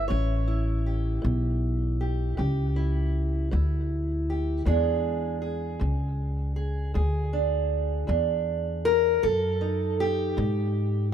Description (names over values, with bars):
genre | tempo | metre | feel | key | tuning
acoustic country blues, solo or duo | 53 BPM (dotted quarters) | 12/8 | straight | E mixolydian | A4 = 440 Hz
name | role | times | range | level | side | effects
fingerpicked steel-string acoustic guitar | melody | 0.0-11.1 s | E2 to C#5 | -28 LUFS | right 1 dB | tape echo
upright bass | bass | 0.0-11.1 s | A1 to G#2 | -26 LUFS | equal | none
room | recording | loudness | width
small room ambience | dry, close 1970s-style studio recording | -24 LUFS | side -9 dB against mid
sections
0.0-11.1 A section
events
none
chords
0.0 A7; 4.7 E7; 9.2 B7